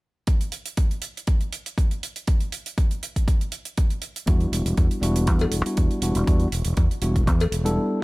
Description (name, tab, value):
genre	nu-disco, nu disco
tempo	120 BPM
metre	4/4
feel	swing 54% on 16ths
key	E minor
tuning	A4 = 439 Hz
part	electronic kick drum	drums	0.3-7.4 s	none	-21 LUFS	equal	studio reverb
part	hi-hat	drums	0.3-7.8 s	none	-33 LUFS	right 5 dB	studio reverb
part	mellow tine electric piano	accompaniment	4.3-8.0 s	G3 to A4	-26 LUFS	equal	none
part	overdriven fingered electric bass	bass	4.3-7.8 s	E1 to E2	-23 LUFS	equal	none
part	cowbell	percussion	5.4-7.5 s	none	-29 LUFS	left 4 dB	none
room	small room ambience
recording	none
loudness	-21 LUFS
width	side -22 dB against mid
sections	0.3-8.0 A section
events	none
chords	0.3 Em9